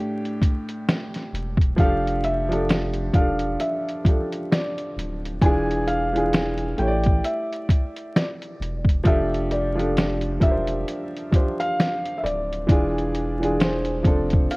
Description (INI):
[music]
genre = lo-fi hip hop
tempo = 66 BPM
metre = 4/4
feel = swing 59% on 16ths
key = F major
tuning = A4 = 440 Hz
[part]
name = felt-muted upright piano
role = melody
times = 0.0-14.6 s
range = C5 to G#5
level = -28 LUFS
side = equal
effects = low-pass filter
[part]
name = warm upright piano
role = accompaniment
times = 0.0-14.6 s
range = A2 to D5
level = -25 LUFS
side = equal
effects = cassette tape, low-pass filter
[part]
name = lo-fi sampler-style drum kit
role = drums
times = 0.3-14.6 s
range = hi-hat, kick drum, snare drum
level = -20 LUFS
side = equal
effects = none
[part]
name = soft dub sub bass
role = bass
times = 1.3-14.5 s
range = D1 to A1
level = -28 LUFS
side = equal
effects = none
[sound]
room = light reverb, small room ambience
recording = worn, warbling old tape, cassette tape, vinyl crackle, warbly pitch drift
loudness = -20 LUFS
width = side -26 dB against mid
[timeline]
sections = 0.0-14.6 A section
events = none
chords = 0.0 A7sus4; 1.8 F69; 5.4 E7b9; 6.8 A7sus4; 9.1 F69; 12.7 E7b9; 14.1 F6